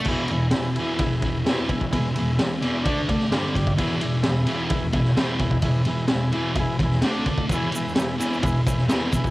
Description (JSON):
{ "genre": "garage rock duo or trio", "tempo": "129 BPM", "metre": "4/4", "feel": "straight", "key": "E mixolydian", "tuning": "A4 = 440 Hz", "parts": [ { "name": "thick fuzz guitar", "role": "riff", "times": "0.0-9.3 s", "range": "E2 to D4", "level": "-23 LUFS", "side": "equal", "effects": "distortion" }, { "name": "raw garage drum kit", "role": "drums", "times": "0.0-9.3 s", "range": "crash cymbal, kick drum, ride cymbal, snare drum", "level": "-25 LUFS", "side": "equal", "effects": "cassette tape" }, { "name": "egg shaker", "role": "percussion", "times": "0.0, 7.5-9.3 s", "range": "none", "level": "-39 LUFS", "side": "right 3 dB", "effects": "none" }, { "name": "combo organ", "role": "sustained chords", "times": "0.1-9.3 s", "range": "D4 to D5", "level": "-31 LUFS", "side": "equal", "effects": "none" } ], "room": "moderate booth ambience, RT60 0.2 s", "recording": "home recording on cassette", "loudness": "-20 LUFS", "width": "side -19 dB against mid", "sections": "0.1-9.3 A section", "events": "none", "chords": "0.1 E; 2.9 D5; 3.3 G5; 3.8 E; 7.0 D5; 7.5 E" }